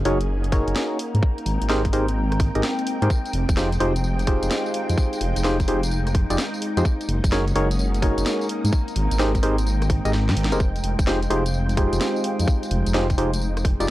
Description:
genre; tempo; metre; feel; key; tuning
UK garage, two-step garage; 128 BPM; 4/4; swing 66% on 16ths; F minor; A4 = 440 Hz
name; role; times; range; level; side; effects
soft string machine; sustained chords; 0.0-13.9 s; Ab3 to G5; -32 LUFS; left 1 dB; ensemble chorus, sidechain pumping
dark detuned saw bass; bass; 0.0-13.9 s; F1 to Ab2; -23 LUFS; equal; none
warbly tape-like pad; texture; 0.0-13.9 s; Ab3 to Bb5; -31 LUFS; equal; chorus, built-in reverb, sidechain pumping
percussive organ stab; stabs; 0.1-13.9 s; Eb4 to Eb5; -25 LUFS; equal; chorus, tape echo
garage drum kit; drums; 0.1-13.9 s; hi-hat, rim click, snare drum, tambourine; -29 LUFS; equal; none
electronic kick drum; drums; 0.5-13.8 s; none; -21 LUFS; equal; none
room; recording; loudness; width
digital ambience; dry, gritty hardware recording, transformer saturation, cassette tape; -19 LUFS; side -16 dB against mid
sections
0.0-13.9 A section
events
kick drops out 10.1-10.6; drum fill 10.1-10.6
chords
0.0 Gb69; 1.0 Abmaj9; 3.1 Fm9; 6.9 Gb69; 8.5 Abmaj9; 10.6 Fm9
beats
0.29 0.76 | 1.23 1.69 2.16 2.63 | 3.10 3.57 4.04 4.51 | 4.98 5.44 5.91 6.38 | 6.85 7.32 7.79 8.26 | 8.73 9.19 9.66 10.13 | 10.60 11.07 11.54 12.01 | 12.48 12.94 13.41 13.88

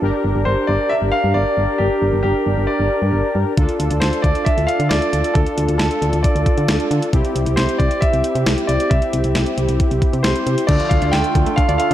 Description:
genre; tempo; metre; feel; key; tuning
synth-pop; 135 BPM; 4/4; straight; D minor; A4 = 440 Hz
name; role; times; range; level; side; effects
analog synth brass; accompaniment; 0.0-11.9 s; C4 to Bb4; -21 LUFS; left 1 dB; chorus
solid FM bass; bass; 0.0-11.9 s; G1 to D3; -20 LUFS; equal; none
clear grand piano; melody; 0.5-11.9 s; G4 to G5; -21 LUFS; equal; slapback echo
clean 12-bit digital drum machine; drums; 3.6-11.9 s; crash cymbal, hi-hat, kick drum, snare drum; -19 LUFS; equal; overdrive
hand-pumped harmonium; sustained chords; 10.7-11.9 s; D3 to F4; -26 LUFS; right 1 dB; stereo widening
analog pluck; arpeggios; 10.7-11.9 s; D3 to D5; -25 LUFS; right 1 dB; chorus, phaser, slapback echo
room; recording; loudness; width
light reverb; dark, warm production; -15 LUFS; side -12 dB against mid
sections
0.0-10.7 A section; 10.7-11.9 B section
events
none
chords
0.0 Gm; 3.6 Dm; 7.1 C; 10.7 Dm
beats
| 0.02 0.46 0.91 1.35 | 1.80 2.24 2.69 3.13 | 3.58 4.02 4.46 4.91 | 5.35 5.80 6.24 6.69 | 7.13 7.58 8.02 8.46 | 8.91 9.35 9.80 10.24 | 10.69 11.13 11.57

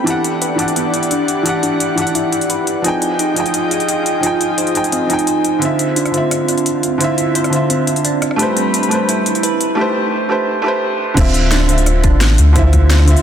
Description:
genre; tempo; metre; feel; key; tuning
liquid drum and bass; 173 BPM; 4/4; straight; D dorian; A4 = 439 Hz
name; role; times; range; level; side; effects
felt-muted upright piano; accompaniment; 0.0-13.2 s; D3 to G5; -17 LUFS; equal; vintage 12-bit sampler grit, digital delay
airy breathy pad; sustained chords; 0.0-9.8 s; G3 to B5; -21 LUFS; left 1 dB; chorus, sidechain pumping
harp-like synth pluck; arpeggios; 0.1-13.1 s; B3 to C5; -21 LUFS; right 3 dB; chorus, phaser, tape echo
drum and bass drum kit; drums; 0.1-13.2 s; crash cymbal, hi-hat, rim click, snare drum; -20 LUFS; left 1 dB; small room ambience
sub bass with octave; bass; 5.6-13.2 s; D1 to D2; -11 LUFS; equal; high-pass filter
electronic kick drum; drums; 11.2-12.8 s; none; -14 LUFS; equal; small room ambience
room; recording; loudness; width
moderate lush hall reverb, RT60 2.3 s; dense, heavily limited modern master, high-pass filter; -13 LUFS; side -9 dB against mid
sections
0.0-5.6 A section; 5.6-11.2 B section; 11.2-13.2 C section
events
filter sweep on synth pluck 0.0-5.6; build-up 5.6-11.2; filter sweep on analog synth pad 5.6-11.2; filter sweep 5.6-11.2; drop 11.2-13.2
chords
0.1 Em9; 2.8 Fm9; 5.6 Dm9; 8.2 Am9; 11.2 Dm9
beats
| 0.07 0.42 0.77 1.11 | 1.46 1.81 2.15 2.50 | 2.85 3.19 3.54 3.89 | 4.23 4.58 4.93 5.27 | 5.62 5.97 6.32 6.66 | 7.01 7.36 7.70 8.05 | 8.39 8.74 9.09 9.44 | 9.78 10.13 10.48 10.82 | 11.17 11.52 11.86 12.21 | 12.56 12.90

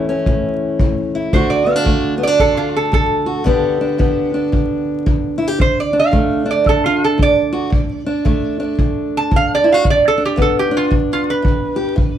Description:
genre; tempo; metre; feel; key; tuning
acoustic country blues, solo or duo; 113 BPM; 4/4; swing 64% on 8ths; D major; A4 = 439 Hz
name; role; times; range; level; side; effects
fingerpicked steel-string acoustic guitar; accompaniment; 0.0-12.2 s; D2 to G4; -18 LUFS; equal; none
kick drum; drums; 0.3-12.1 s; none; -18 LUFS; equal; none
lap resonator guitar; melody; 1.3-12.2 s; F4 to A5; -16 LUFS; right 3 dB; none
room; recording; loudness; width
moderate studio reverb, RT60 0.6 s; band playing live in one room, vinyl crackle; -13 LUFS; side -10 dB against mid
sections
0.0-1.3 A section; 1.3-12.2 B section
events
resonator guitar played with a steel bar solo 1.3-12.2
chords
0.0 A; 1.3 D; 3.5 G; 5.6 D5; 9.8 G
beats
0.26 0.80 | 1.33 1.86 2.40 2.93 | 3.46 3.99 4.53 5.06 | 5.59 6.12 6.66 7.19 | 7.72 8.25 8.78 9.31 | 9.85 10.38 10.91 11.44 | 11.97

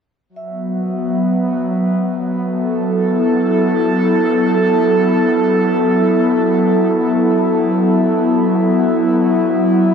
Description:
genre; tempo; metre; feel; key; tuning
ambient; free time; none; none; F# minor; A4 = 440 Hz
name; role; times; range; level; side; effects
airy breathy pad; sustained chords; 0.3-9.9 s; F#3 to A4; -13 LUFS; equal; chorus
glass harmonica; texture; 0.3-9.9 s; E5; -30 LUFS; equal; stereo widening
vibraphone with soft mallets; arpeggios; 0.4-9.4 s; E5 to A5; -33 LUFS; right 4 dB; none
room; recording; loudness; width
wet cathedral reverb, RT60 4.9 s; none; -13 LUFS; side -6 dB against mid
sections
0.3-9.9 A section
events
fade-in on glass harmonica 0.3-9.9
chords
0.3 F#m; 9.3 F#7sus4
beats
free time

